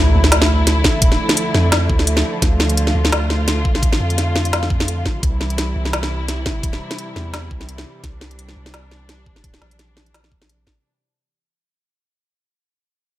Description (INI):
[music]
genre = half-time drum and bass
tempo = 171 BPM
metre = 4/4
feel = swing 55% on 16ths, half-time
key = unclear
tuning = A4 = 439 Hz
[part]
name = dark studio string section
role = sustained chords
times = 0.0-10.8 s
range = C3 to F4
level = -23 LUFS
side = equal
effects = vintage 12-bit sampler grit, sidechain pumping
[part]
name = long sustained 808-style bass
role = bass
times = 0.0-10.7 s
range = Bb1 to F2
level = -19 LUFS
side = equal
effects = none
[part]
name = impact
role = sound effects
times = 0.0-1.0 s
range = none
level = -24 LUFS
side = equal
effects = none
[part]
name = organic electronic drum kit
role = drums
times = 0.2-10.7 s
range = hi-hat, snare drum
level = -19 LUFS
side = equal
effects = overdrive
[part]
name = electronic kick drum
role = drums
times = 0.8-10.7 s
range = none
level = -18 LUFS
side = equal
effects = none
[sound]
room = light reverb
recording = none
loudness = -15 LUFS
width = side -14 dB against mid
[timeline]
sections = 0.0-10.8 A section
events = fade-out 0.0-10.8; impact 0.0-1.0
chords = 0.0 Dmadd9; 5.2 C